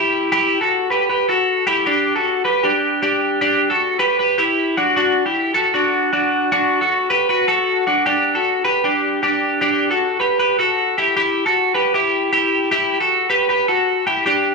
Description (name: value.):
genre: indie pop.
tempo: 155 BPM.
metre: 4/4.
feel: straight.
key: unclear.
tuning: A4 = 440 Hz.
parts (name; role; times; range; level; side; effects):
twelve-string electric guitar; solo; 0.0-14.5 s; D4 to B4; -15 LUFS; equal; none.
room: moderate large studio reverb, RT60 1.2 s.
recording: band playing live in one room.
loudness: -15 LUFS.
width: side -3 dB against mid.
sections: 0.0-1.9 A section; 1.9-14.3 B section.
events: none.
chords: 0.0 Emadd9; 1.9 D; 8.1 G; 11.0 Emadd9.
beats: | 0.32 0.71 1.10 1.48 | 1.87 2.26 2.64 3.03 | 3.42 3.81 4.19 4.58 | 4.97 5.35 5.74 6.13 | 6.52 6.90 7.29 7.68 | 8.06 8.45 8.84 9.23 | 9.62 10.00 10.39 10.78 | 11.16 11.55 11.94 12.33 | 12.71 13.10 13.49 13.88 | 14.26.